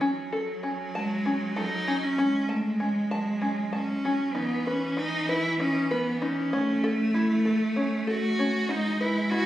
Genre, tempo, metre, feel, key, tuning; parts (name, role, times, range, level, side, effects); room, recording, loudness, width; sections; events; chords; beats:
contemporary instrumental, chamber music in an uneven meter; 194 BPM (eighths); 7/8; straight; F# dorian; A4 = 440 Hz
bright cello; second line; 0.0-9.5 s; E3 to A3; -29 LUFS; right 1 dB
open-back banjo; arpeggios; 0.0-9.5 s; C#4 to A5; -30 LUFS; left 1 dB
rich cello; melody; 0.9-9.5 s; F#3 to F#4; -28 LUFS; equal
moderate recital hall reverb, RT60 1.5 s; recorded on a phone in the room, studio reverb, compression; -24 LUFS; side -13 dB against mid
0.0-4.4 A section; 4.4-9.5 B section
0.0 F#m; 4.4 E5; 6.5 F#m7; 8.7 Emaj7
| 0.01 0.32 0.63 0.94 1.25 1.56 1.87 | 2.18 2.49 2.80 3.11 3.42 3.73 4.04 | 4.36 4.67 4.97 5.29 5.59 5.91 6.21 | 6.53 6.83 7.14 7.45 7.76 8.07 8.38 | 8.69 9.00 9.31